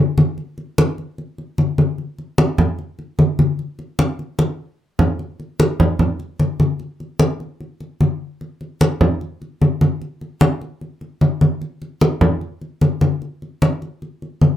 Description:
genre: jazz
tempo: 150 BPM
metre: 4/4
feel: straight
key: none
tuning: none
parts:
  - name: congas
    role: percussion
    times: 0.2-14.6 s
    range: none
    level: -15 LUFS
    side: equal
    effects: none
room: moderate studio reverb, RT60 0.5 s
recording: none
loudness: -17 LUFS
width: side -11 dB against mid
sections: 0.0-11.6 A section; 11.6-14.6 A section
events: drum fill 4.4-5.2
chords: none

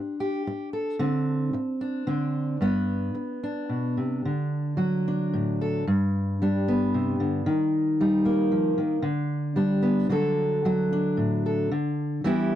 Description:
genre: folk, solo fingerstyle acoustic guitar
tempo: 112 BPM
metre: 3/4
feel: rubato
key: unclear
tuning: A4 = 440 Hz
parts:
  - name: fingerpicked steel-string acoustic guitar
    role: solo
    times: 0.0-12.6 s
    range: G2 to A4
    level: -23 LUFS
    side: equal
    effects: none
room: light reverb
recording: dry, close 1970s-style studio recording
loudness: -23 LUFS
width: side -11 dB against mid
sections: 0.0-4.2 A section; 4.2-12.6 B section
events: none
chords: 0.0 Csus2 (rootless); 1.0 D5; 2.1 Csus2/D; 2.6 G; 4.2 D; 5.9 G; 7.5 Eb; 9.0 G/D; 10.1 D

